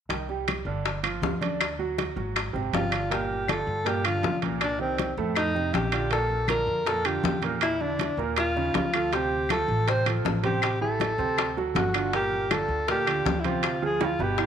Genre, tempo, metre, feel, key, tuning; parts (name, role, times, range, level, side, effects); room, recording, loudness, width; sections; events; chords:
Afro-Cuban jazz; 160 BPM; 4/4; straight; G minor; A4 = 439 Hz
clear baby grand piano; accompaniment; 0.1-14.5 s; A2 to D5; -31 LUFS; right 7 dB
upright bass; bass; 0.1-14.5 s; G1 to G2; -32 LUFS; left 1 dB
bongos; percussion; 0.1-14.5 s; -33 LUFS; left 13 dB
congas; percussion; 0.1-14.5 s; -33 LUFS; left 4 dB
timbales; percussion; 0.1-14.5 s; -33 LUFS; right 11 dB
claves; percussion; 0.5-14.5 s; -33 LUFS; left 13 dB
warm alto saxophone; melody; 2.8-14.5 s; C4 to C5; -27 LUFS; equal; tape echo
moderate echo chamber reverb, RT60 1.4 s, small room ambience; 1960s-style stereo with parts hard left and right; -24 LUFS; side -8 dB against mid
0.1-3.1 A section; 3.1-14.5 B section
drum fill 14.0-14.5
0.1 Cmadd9; 0.9 G5; 1.6 D; 2.4 Ab6; 3.1 Gm7; 4.6 Cm7; 5.4 F7; 6.1 Bbmaj7; 7.6 Bbadd11; 8.4 Ebsus2; 9.1 Dm7; 10.6 Am7; 11.4 D7; 12.1 Gm7; 13.6 Dm7b5